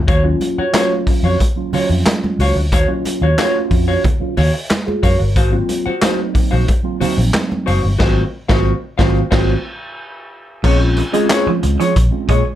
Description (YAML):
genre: funk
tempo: 91 BPM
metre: 4/4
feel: straight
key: unclear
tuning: A4 = 441 Hz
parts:
  - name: vintage muted fingered electric bass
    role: bass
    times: 0.0-12.4 s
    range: Gb1 to Bb2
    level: -16 LUFS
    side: equal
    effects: none
  - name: vintage hollow-body jazz guitar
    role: accompaniment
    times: 0.1-12.5 s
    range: F4 to Gb5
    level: -20 LUFS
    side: left 1 dB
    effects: none
  - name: raw garage drum kit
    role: drums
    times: 0.1-12.4 s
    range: crash cymbal, handclaps, hi-hat, kick drum, snare drum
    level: -18 LUFS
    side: equal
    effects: none
  - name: congas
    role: percussion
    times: 0.1-7.7 s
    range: none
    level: -24 LUFS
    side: right 3 dB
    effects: none
  - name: mellow tine electric piano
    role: stabs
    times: 0.2-12.6 s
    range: F3 to Db5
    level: -21 LUFS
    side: right 2 dB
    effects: phaser, slapback echo
  - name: semi-hollow electric guitar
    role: riff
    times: 10.6-12.4 s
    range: F3 to Bb3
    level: -20 LUFS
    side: right 5 dB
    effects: none
room: light reverb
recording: none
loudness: -13 LUFS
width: side -12 dB against mid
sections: 0.0-10.6 A section; 10.6-12.6 B section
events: band accent 8.0-10.6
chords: 0.1 Ebm9; 5.4 Ab13; 10.6 Bbm7